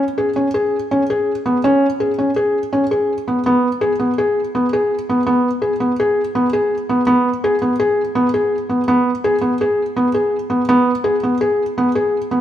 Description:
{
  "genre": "contemporary instrumental, contemporary",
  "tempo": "166 BPM",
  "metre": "5/4",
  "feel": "straight",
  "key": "G# minor",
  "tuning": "A4 = 440 Hz",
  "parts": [
    { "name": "felt-muted upright piano", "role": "solo", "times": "0.0-12.4 s", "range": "B3 to G#4", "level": "-15 LUFS", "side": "equal", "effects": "none" }
  ],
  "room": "moderate scoring stage reverb, RT60 1.8 s",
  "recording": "none",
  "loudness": "-15 LUFS",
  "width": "side -11 dB against mid",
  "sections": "0.0-3.5 A section; 3.5-12.4 B section",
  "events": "none",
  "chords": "none"
}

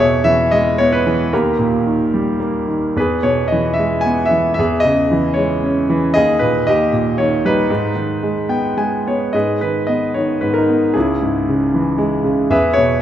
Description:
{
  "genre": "classical, lyrical solo piano",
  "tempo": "113 BPM",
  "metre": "3/4",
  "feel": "rubato",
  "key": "G# harmonic minor",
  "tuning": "A4 = 440 Hz",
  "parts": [
    { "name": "clear concert grand piano", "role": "solo", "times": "0.0-13.0 s", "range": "C#2 to G#5", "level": "-14 LUFS", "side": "equal", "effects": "none" }
  ],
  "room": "moderate concert hall reverb, RT60 1.9 s",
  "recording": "minimal, uncompressed stereo recording",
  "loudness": "-14 LUFS",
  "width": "side -11 dB against mid",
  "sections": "0.0-9.3 A section; 9.3-13.0 A section",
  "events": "grand piano fill 8.2-9.3",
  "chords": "0.0 E; 1.3 D#; 3.0 E; 4.6 C#m/E; 6.2 D#sus4; 6.7 D#; 7.7 G#m; 11.0 C#m; 12.5 E"
}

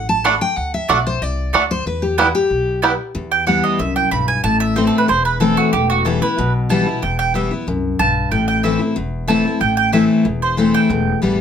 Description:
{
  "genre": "bluegrass",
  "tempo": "186 BPM",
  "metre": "4/4",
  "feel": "straight",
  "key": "E minor",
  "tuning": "A4 = 437 Hz",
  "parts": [
    { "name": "picked steel-string acoustic guitar", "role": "accompaniment", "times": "0.0-11.4 s", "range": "E2 to B5", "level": "-18 LUFS", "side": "left 3 dB", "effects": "none" },
    { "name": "upright bass", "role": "bass", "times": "0.0-11.4 s", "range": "E1 to E2", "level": "-23 LUFS", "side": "left 1 dB", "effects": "none" },
    { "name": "mandolin", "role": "stabs", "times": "0.2-11.2 s", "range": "A3 to B5", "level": "-18 LUFS", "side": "right 5 dB", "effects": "none" },
    { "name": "bluegrass banjo", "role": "arpeggios", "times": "0.3-2.9 s", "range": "G3 to E4", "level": "-18 LUFS", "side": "right 3 dB", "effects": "none" }
  ],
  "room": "moderate studio reverb, RT60 0.5 s",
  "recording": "none",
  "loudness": "-14 LUFS",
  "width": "side -8 dB against mid",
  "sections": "0.0-3.2 A section; 3.2-11.4 A section",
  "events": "steel-string acoustic guitar solo 0.0-3.2; mandolin solo 3.2-11.4",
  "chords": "0.0 D; 1.9 Em; 4.4 Am; 5.7 Em; 8.3 Am; 10.9 Em"
}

